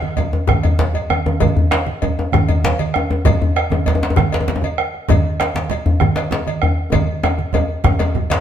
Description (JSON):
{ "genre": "west african traditional, West African drum ensemble", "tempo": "130 BPM (dotted quarters)", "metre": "12/8", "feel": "straight", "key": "none", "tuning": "none", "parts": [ { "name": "congas", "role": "percussion", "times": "0.0-8.4 s", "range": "none", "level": "-23 LUFS", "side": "right 5 dB", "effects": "none" }, { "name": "djembe", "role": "percussion", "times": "0.0-8.4 s", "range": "none", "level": "-22 LUFS", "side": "left 3 dB", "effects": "none" }, { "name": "cowbell", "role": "percussion", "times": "0.2-8.4 s", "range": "none", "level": "-26 LUFS", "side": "right 1 dB", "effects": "none" }, { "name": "djembe", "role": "percussion", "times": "0.2-8.4 s", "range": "none", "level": "-18 LUFS", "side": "left 2 dB", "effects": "none" }, { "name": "bombo", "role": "percussion", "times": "0.3-8.4 s", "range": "none", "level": "-21 LUFS", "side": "right 3 dB", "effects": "none" } ], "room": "wet stone room reverb, RT60 1.2 s", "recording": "band playing live in one room", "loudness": "-15 LUFS", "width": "side -9 dB against mid", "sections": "0.0-8.4 A section", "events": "drum fill 0.9-1.4, 6.9-8.4", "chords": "none" }